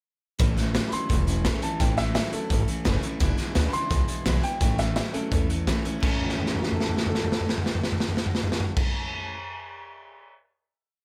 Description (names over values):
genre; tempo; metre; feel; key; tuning
rockabilly; 170 BPM; 4/4; straight; A major; A4 = 444 Hz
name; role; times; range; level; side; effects
picked steel-string acoustic guitar; accompaniment; 0.4-9.4 s; E2 to E4; -36 LUFS; equal; none
electric guitar through a small old amp; riff; 0.4-9.3 s; E2 to C#5; -36 LUFS; equal; none
upright bass; bass; 0.4-8.8 s; E1 to E2; -31 LUFS; equal; none
raw garage drum kit; drums; 0.4-10.3 s; crash cymbal, hi-hat, kick drum, snare drum, toms; -28 LUFS; equal; none
dark upright piano; melody; 0.9-8.8 s; C#4 to C6; -35 LUFS; equal; digital delay
room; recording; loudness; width
little or no reverb; none; -26 LUFS; mono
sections
0.4-6.0 A section; 6.0-8.9 final chord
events
drum fill 6.2-8.8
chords
0.4 A; 3.2 E7; 4.6 A